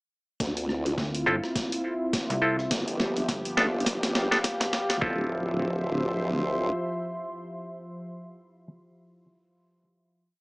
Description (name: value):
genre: glitch hop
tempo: 104 BPM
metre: 4/4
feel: swing 58% on 16ths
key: D dorian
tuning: A4 = 441 Hz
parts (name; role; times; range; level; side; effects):
- warm analog pad; sustained chords; 0.4-8.1 s; F3 to E5; -32 LUFS; equal; chorus, sidechain pumping
- formant-sweep wobble bass; bass; 0.4-6.7 s; D1 to D2; -30 LUFS; equal; chorus, tube saturation
- boom bap sampler-style drum kit; drums; 0.4-5.0 s; hi-hat, rim click, snare drum; -29 LUFS; equal; none
- electronic kick drum; drums; 0.4-5.2 s; none; -37 LUFS; equal; none
- slap-like FM bass; bass; 1.0-5.0 s; F1 to D2; -33 LUFS; equal; none
- deep dark ambient pad; texture; 1.9-8.1 s; F3 to C6; -34 LUFS; equal; chorus, built-in reverb, sidechain pumping
- clav; stabs; 1.3-8.7 s; B3 to A4; -27 LUFS; equal; sidechain pumping, low-pass filter, digital delay
room: moderate small room reverb, RT60 0.6 s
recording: high-pass filter, small speaker sound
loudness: -25 LUFS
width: side -28 dB against mid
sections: 0.4-5.0 build; 5.0-7.3 final chord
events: build-up 0.4-5.0; drum fill 0.4-5.0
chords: 0.4 Dm9; 2.7 G7; 5.0 Dm9